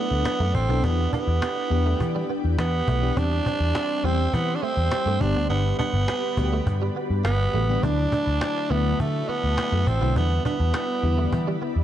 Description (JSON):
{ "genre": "1980s-style pop", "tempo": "103 BPM", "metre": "4/4", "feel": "straight", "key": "E minor", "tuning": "A4 = 440 Hz", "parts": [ { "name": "growling tenor saxophone", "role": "melody", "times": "0.0-11.6 s", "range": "A3 to D4", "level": "-26 LUFS", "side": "right 3 dB", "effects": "digital delay" }, { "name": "FM electric piano with soft pad layer", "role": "accompaniment", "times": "0.0-11.8 s", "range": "D3 to A4", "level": "-30 LUFS", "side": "left 4 dB", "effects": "chorus, phaser" }, { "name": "ethereal airy pad", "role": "sustained chords", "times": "0.0-11.8 s", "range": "E4 to C6", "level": "-37 LUFS", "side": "left 2 dB", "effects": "ensemble chorus, built-in reverb" }, { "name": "direct-recorded clean electric guitar", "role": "riff", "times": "0.0-11.7 s", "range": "G3 to D4", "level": "-34 LUFS", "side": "right 6 dB", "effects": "ensemble chorus, digital delay" }, { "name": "vintage muted picked electric bass", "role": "bass", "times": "0.1-11.8 s", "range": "G1 to E3", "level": "-23 LUFS", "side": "equal", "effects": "none" }, { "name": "cajon", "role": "drums", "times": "0.3-11.7 s", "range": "none", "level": "-30 LUFS", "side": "equal", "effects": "none" } ], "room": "light reverb, small room ambience", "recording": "dark, warm production", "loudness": "-21 LUFS", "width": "side -11 dB against mid", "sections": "0.0-11.8 A section", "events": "none", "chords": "0.0 Dadd9; 0.8 Em7; 3.2 C/E; 5.2 G; 7.8 Dadd9; 10.2 Em7", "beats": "0.26 | 0.84 1.42 2.01 2.59 | 3.17 3.75 4.34 4.92 | 5.50 6.08 6.67 7.25 | 7.83 8.41 9.00 9.58 | 10.16 10.74 11.33" }